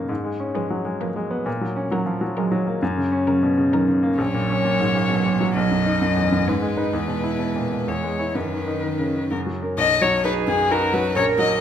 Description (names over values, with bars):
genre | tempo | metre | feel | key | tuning
quick classical-period movement for piano trio | 131 BPM | 3/4 | straight | F# major, B major from 4.2 s | A4 = 438 Hz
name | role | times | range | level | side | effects
bright grand piano | accompaniment | 0.0-11.6 s | A#1 to C#5 | -22 LUFS | left 1 dB | none
warm cello | second line | 0.5-11.6 s | C#3 to A#4 | -26 LUFS | right 7 dB | none
rich violin | melody | 0.6-11.6 s | G#4 to D#5 | -24 LUFS | left 5 dB | none
room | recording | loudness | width
wet recital hall reverb, RT60 1.6 s | none | -19 LUFS | side -9 dB against mid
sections
0.0-9.8 A section; 9.8-11.6 B section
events
none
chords
0.1 C#7/G#; 1.5 F#/A#; 2.8 F#; 4.2 F#/A#; 5.6 B; 6.5 G#m; 6.9 E; 7.9 C#m/E; 8.3 B/F#; 9.3 F#; 9.8 B